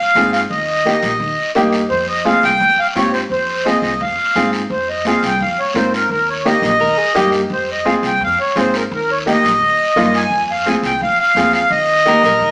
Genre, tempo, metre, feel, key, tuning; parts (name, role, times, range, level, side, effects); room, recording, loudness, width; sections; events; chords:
latin, cumbia; 171 BPM; 4/4; straight; F minor; A4 = 438 Hz
accordion; melody; 0.0-12.5 s; Bb4 to Ab5; -14 LUFS; equal
congas; percussion; 0.1-12.5 s; -24 LUFS; equal
bright upright piano; accompaniment; 0.2-12.3 s; Bb3 to Bb4; -18 LUFS; equal
upright bass; bass; 0.2-12.5 s; Bb1 to Ab2; -26 LUFS; equal
guiro; percussion; 0.2-12.5 s; -26 LUFS; left 1 dB
electric guitar at the edge of break-up; second line; 6.8-7.4, 12.1-12.5 s; G4 to Bb4; -18 LUFS; equal
wet large studio reverb, RT60 1.1 s; band playing live in one room, small speaker sound; -12 LUFS; side -29 dB against mid
0.0-4.7 A section; 4.7-12.5 A section
0.0 Fm; 0.5 Eb; 1.9 Fm; 6.1 Eb; 7.5 Fm; 8.9 Eb; 10.3 Fm; 11.7 Eb